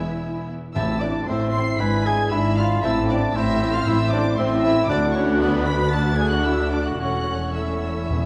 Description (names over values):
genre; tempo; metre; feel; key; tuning
quick classical-period movement for symphony orchestra; 116 BPM; 4/4; uneven beats, rubato; A minor, A major from 4.9 s; A4 = 440 Hz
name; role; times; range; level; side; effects
rich chamber violin section; melody; 0.0-8.3 s; B5 to C7; -35 LUFS; equal; none
clear oboe; second line; 0.0-8.3 s; C5 to B5; -31 LUFS; equal; none
mellow hollow silver concert flute; second line; 0.0-8.3 s; B4 to C6; -32 LUFS; equal; none
rich chamber violin section; second line; 0.0-8.3 s; B4 to C6; -35 LUFS; equal; none
warm clarinet; second line; 0.0-8.3 s; B3 to C5; -31 LUFS; equal; none
rich chamber viola section; accompaniment; 0.0-8.3 s; B3 to A4; -31 LUFS; equal; none
dark French horn section; sustained chords; 0.0-8.3 s; G#3 to F#4; -29 LUFS; equal; none
rich chamber cello section; bass; 0.0-8.3 s; D2 to A2; -28 LUFS; equal; none
rich chamber double bass section; bass; 0.0-8.3 s; E1 to D2; -29 LUFS; equal; none
timpani; percussion; 0.8-1.5, 8.1-8.3 s; E2 to A2; -32 LUFS; equal; none
room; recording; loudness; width
wet scoring stage reverb, RT60 2.1 s; dark, warm production; -21 LUFS; mono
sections
0.0-8.3 A section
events
none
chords
0.0 E; 0.8 Am; 1.8 E7/G#; 2.8 Am; 4.9 D; 7.0 A/E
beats
0.23 | 0.76 1.29 1.81 2.33 | 2.84 3.36 3.88 4.39 | 4.89 5.40 5.92 6.45 | 6.99 7.54 8.09